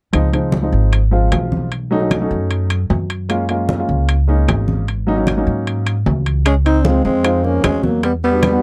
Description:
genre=Afro-Cuban jazz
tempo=152 BPM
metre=4/4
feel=straight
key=Db major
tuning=A4 = 441 Hz
part: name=dark baby grand piano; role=accompaniment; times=0.1-8.6 s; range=F3 to Gb4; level=-22 LUFS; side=equal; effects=none
part: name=upright bass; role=bass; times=0.1-8.6 s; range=Ab1 to Ab2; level=-20 LUFS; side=equal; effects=none
part: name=claves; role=percussion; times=0.1-8.6 s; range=none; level=-34 LUFS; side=equal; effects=none
part: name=congas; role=percussion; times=0.1-8.6 s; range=none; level=-25 LUFS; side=equal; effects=none
part: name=timbales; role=percussion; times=0.1-8.6 s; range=none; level=-26 LUFS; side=equal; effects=none
part: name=mellow trombone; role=melody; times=6.5-8.6 s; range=Bb3 to Eb4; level=-19 LUFS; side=equal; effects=none
part: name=growling tenor saxophone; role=second line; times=6.5-8.6 s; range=Gb3 to C4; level=-24 LUFS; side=equal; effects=none
part: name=bongos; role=percussion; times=6.5-8.6 s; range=none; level=-28 LUFS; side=equal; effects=none
room=little or no reverb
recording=dark, warm production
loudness=-17 LUFS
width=mono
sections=0.1-6.5 A section; 6.5-8.6 B section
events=none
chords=0.1 Dbmaj9; 1.7 Cb9; 3.3 Gbmaj9; 4.9 Ab9sus4; 6.5 Dbmaj9; 8.0 Em7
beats=| 0.13 0.53 0.92 1.32 | 1.72 2.11 2.51 2.90 | 3.30 3.69 4.09 4.48 | 4.88 5.27 5.67 6.06 | 6.46 6.85 7.25 7.64 | 8.03 8.43

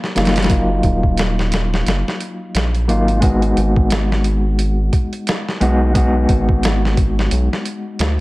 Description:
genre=trip hop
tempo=88 BPM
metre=4/4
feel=swing 58% on 16ths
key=unclear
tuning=A4 = 440 Hz
part: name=mellow electric guitar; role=accompaniment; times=0.0-8.2 s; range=Gb3 to Gb4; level=-19 LUFS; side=left 1 dB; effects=tremolo, low-pass filter, tape echo
part: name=boom bap sampler-style drum kit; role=drums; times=0.0-8.2 s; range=hi-hat, kick drum, snare drum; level=-18 LUFS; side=equal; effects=studio reverb
part: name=round analog bass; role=bass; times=0.2-8.2 s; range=Eb1 to D2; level=-18 LUFS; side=equal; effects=none
room=light reverb, digital ambience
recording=none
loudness=-14 LUFS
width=side -20 dB against mid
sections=0.0-8.2 A section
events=filter sweep on clean electric guitar 0.0-8.2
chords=0.0 Ebmadd9; 3.2 Abm7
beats=| 0.50 1.18 1.86 2.54 | 3.22 3.90 4.59 5.27 | 5.95 6.63 7.32 8.00

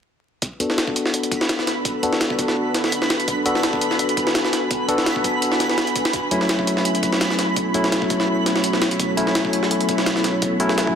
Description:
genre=drum and bass, jungle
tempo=168 BPM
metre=4/4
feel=swing 54% on 16ths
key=B dorian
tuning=A4 = 440 Hz
part: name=ethereal airy pad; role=sustained chords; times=1.0-11.0 s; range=B3 to G#5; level=-26 LUFS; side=right 1 dB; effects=ensemble chorus, built-in reverb
part: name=jungle sampler-style drum kit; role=drums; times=0.4-11.0 s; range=hi-hat, kick drum, snare drum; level=-22 LUFS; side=equal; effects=high-pass filter on hats, high-pass filter on kick, high-pass filter on snare
part: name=twinkling granular texture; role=texture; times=1.2-11.0 s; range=B5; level=-28 LUFS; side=right 2 dB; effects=built-in reverb
part: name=barky tine electric piano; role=stabs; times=0.6-11.0 s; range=F#3 to A4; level=-22 LUFS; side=left 2 dB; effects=low-pass filter, dub echo
room=moderate lush hall reverb, RT60 1.9 s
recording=dense, heavily limited modern master, vinyl crackle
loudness=-18 LUFS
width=side -7 dB against mid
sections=0.4-11.0 A section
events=filter sweep on tine electric piano 0.4-11.0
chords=0.4 Bm7; 6.1 F#m7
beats=| 0.42 0.78 1.14 1.49 | 1.85 2.21 2.56 2.92 | 3.28 3.64 3.99 4.35 | 4.71 5.07 5.42 5.78 | 6.14 6.49 6.85 7.21 | 7.57 7.92 8.28 8.64 | 8.99 9.35 9.71 10.06 | 10.42 10.78

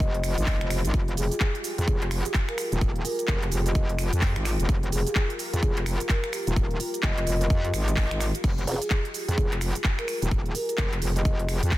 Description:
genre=bass house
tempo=128 BPM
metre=4/4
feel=swing 61% on 16ths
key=F minor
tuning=A4 = 440 Hz
part: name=vibraphone with soft mallets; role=melody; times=0.0-11.5 s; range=Ab4 to Eb5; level=-34 LUFS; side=equal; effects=dub echo
part: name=dark analog pad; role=sustained chords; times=0.0-11.8 s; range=F4 to C5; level=-35 LUFS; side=equal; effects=chorus, sidechain pumping
part: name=metallic wobble bass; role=bass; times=0.0-11.8 s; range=Eb1 to F2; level=-26 LUFS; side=equal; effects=distortion, chorus, tube saturation, sidechain pumping
part: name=electronic kick drum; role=drums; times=0.0-11.8 s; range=none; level=-25 LUFS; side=equal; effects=none
part: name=house drum kit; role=drums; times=0.0-11.8 s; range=crash cymbal, finger snaps, handclaps, hi-hat, shaker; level=-32 LUFS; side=right 1 dB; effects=none
part: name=formant-sweep wobble bass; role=bass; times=8.7-8.8 s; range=F1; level=-27 LUFS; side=right 1 dB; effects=chorus, sidechain pumping
room=little or no reverb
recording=dense, heavily limited modern master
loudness=-23 LUFS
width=side -16 dB against mid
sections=0.0-11.8 A section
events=none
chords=0.0 Fmadd9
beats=0.00 0.47 | 0.94 1.41 1.88 2.35 | 2.81 3.28 3.75 4.22 | 4.69 5.16 5.63 6.09 | 6.56 7.03 7.50 7.97 | 8.44 8.91 9.38 9.85 | 10.31 10.78 11.25 11.72

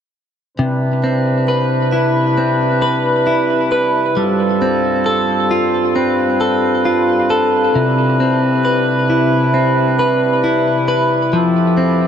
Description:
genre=dream pop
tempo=67 BPM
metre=4/4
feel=straight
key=C major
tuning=A4 = 440 Hz
part: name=bright brass ensemble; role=sustained chords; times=0.6-12.1 s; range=F2 to B4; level=-17 LUFS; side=right 2 dB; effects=none
part: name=direct-recorded clean electric guitar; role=arpeggios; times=0.6-12.1 s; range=C3 to B4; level=-14 LUFS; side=left 1 dB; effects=lush chorus, ping-pong delay
room=wet huge ambient reverb, RT60 4.1 s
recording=dark, warm production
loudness=-13 LUFS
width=side -8 dB against mid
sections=0.6-12.1 A section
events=none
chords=0.6 Cmaj7; 4.2 G9sus4; 7.7 Cmaj7; 11.3 Fmaj7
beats=| 0.58 1.48 2.37 3.27 | 4.16 5.06 5.96 6.85 | 7.75 8.64 9.54 10.43 | 11.33

